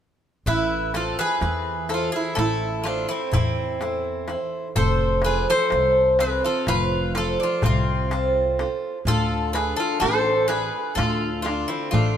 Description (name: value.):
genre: greek folk, Greek bouzouki band.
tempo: 126 BPM (eighths).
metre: 9/8.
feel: straight.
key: A harmonic minor.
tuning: A4 = 440 Hz.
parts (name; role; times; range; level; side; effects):
Greek bouzouki; melody; 0.5-12.2 s; E4 to C5; -24 LUFS; left 2 dB; none.
Greek bouzouki; second line; 0.5-12.2 s; C4 to A4; -27 LUFS; right 4 dB; none.
picked steel-string acoustic guitar; accompaniment; 0.5-12.2 s; C3 to C5; -28 LUFS; right 2 dB; none.
upright bass; bass; 0.5-12.2 s; F1 to E2; -27 LUFS; equal; none.
darbuka; percussion; 0.5-12.2 s; none; -26 LUFS; left 2 dB; none.
room: moderate plate reverb, RT60 3.4 s.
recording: minimal, uncompressed stereo recording.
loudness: -20 LUFS.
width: side -9 dB against mid.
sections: 0.5-12.2 A section.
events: none.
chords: 0.5 Am; 4.8 F; 9.1 Dm.